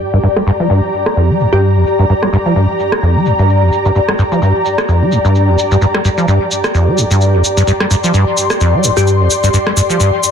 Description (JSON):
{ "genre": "acid house", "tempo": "129 BPM", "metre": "4/4", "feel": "swing 56% on 16ths", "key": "G minor", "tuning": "A4 = 438 Hz", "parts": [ { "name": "electronic shaker and rim click", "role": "drums", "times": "0.0-10.3 s", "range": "none", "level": "-18 LUFS", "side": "equal", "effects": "low-pass filter on hats, low-pass filter on perc, soft clipping on snare, low-pass filter on snare, low-pass filter on cymbals, low-pass filter on room" }, { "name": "ethereal airy pad", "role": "texture", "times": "0.0-10.3 s", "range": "G4 to C6", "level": "-16 LUFS", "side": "left 1 dB", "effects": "ensemble chorus, built-in reverb" }, { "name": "acid bass, saw", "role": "riff", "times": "0.1-10.1 s", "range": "F2 to G3", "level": "-12 LUFS", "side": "equal", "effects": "tube saturation, lush chorus, tape echo" }, { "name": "glassy wavetable pluck", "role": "melody", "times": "1.5-2.2, 9.0-9.6 s", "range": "G4", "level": "-19 LUFS", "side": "left 3 dB", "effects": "chorus, ping-pong delay" } ], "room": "moderate studio reverb, RT60 0.6 s", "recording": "dense, heavily limited modern master", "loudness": "-10 LUFS", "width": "side -7 dB against mid", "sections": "0.0-10.3 A section", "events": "filter sweep on drum 0.0-10.3; filter sweep on acid bass 0.0-10.3", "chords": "0.0 Gm" }